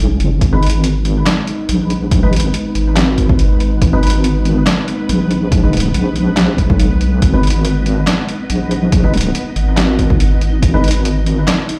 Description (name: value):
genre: deep dubstep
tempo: 141 BPM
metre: 4/4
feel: swing 54% on 16ths, half-time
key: G# minor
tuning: A4 = 441 Hz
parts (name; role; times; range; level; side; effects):
- dark analog pad; sustained chords; 0.0-11.8 s; G#3 to D#4; -24 LUFS; equal; chorus
- deep soft wobble bass; bass; 0.0-11.5 s; F#1 to B1; -16 LUFS; equal; chorus
- trip hop sampler-style drum kit; drums; 0.2-11.8 s; handclaps, hi-hat, snare drum; -22 LUFS; equal; none
- electronic kick drum; drums; 0.4-10.7 s; none; -16 LUFS; equal; none
- flickering grainy texture; texture; 0.9-11.8 s; B3 to B4; -28 LUFS; equal; built-in reverb
- percussive organ stab; stabs; 0.5-10.9 s; G#3 to B4; -26 LUFS; equal; ensemble chorus, dub echo
room: light reverb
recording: played on a big sound system in a bare room, large studio reverb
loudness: -14 LUFS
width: mono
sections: 0.0-11.8 A section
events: none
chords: 0.0 G#m